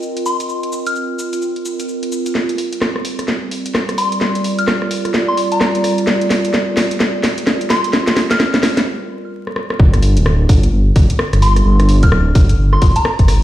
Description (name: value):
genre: UK garage, two-step garage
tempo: 129 BPM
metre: 4/4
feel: swing 61% on 16ths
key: unclear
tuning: A4 = 440 Hz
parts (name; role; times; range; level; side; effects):
- garage drum kit; drums; 0.0-13.4 s; cabasa, hi-hat, rim click, snare drum; -18 LUFS; equal; none
- warbly tape-like pad; texture; 0.0-8.9 s; G3 to Eb5; -20 LUFS; right 2 dB; chorus, built-in reverb, sidechain pumping
- soft synth bell; melody; 0.3-1.0, 4.0-8.4, 11.4-13.3 s; Bb5 to F6; -21 LUFS; left 2 dB; chorus, ping-pong delay
- dark detuned saw bass; bass; 9.8-13.4 s; D1 to G1; -12 LUFS; equal; sidechain pumping
- electronic kick drum; drums; 9.8-13.3 s; none; -12 LUFS; equal; none
room: light reverb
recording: played on a big sound system in a bare room, stone room reverb, vinyl crackle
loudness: -13 LUFS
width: side -13 dB against mid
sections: 0.0-2.4 A section; 2.4-9.8 B section; 9.8-13.4 C section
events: build-up 2.4-9.8; drum fill 2.4-8.9, 9.4-9.8; break 8.9-9.8; drop 9.8-13.4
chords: 0.0 F5; 2.4 Gm7; 9.6 N.C.; 9.8 G5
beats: 0.03 | 0.49 0.96 1.42 1.89 | 2.35 2.82 3.28 3.75 | 4.21 4.68 5.14 5.61 | 6.07 6.54 7.00 7.47 | 7.93 8.40 8.87 9.33 | 9.79 10.26 10.72 11.19 | 11.66 12.12 12.59 13.05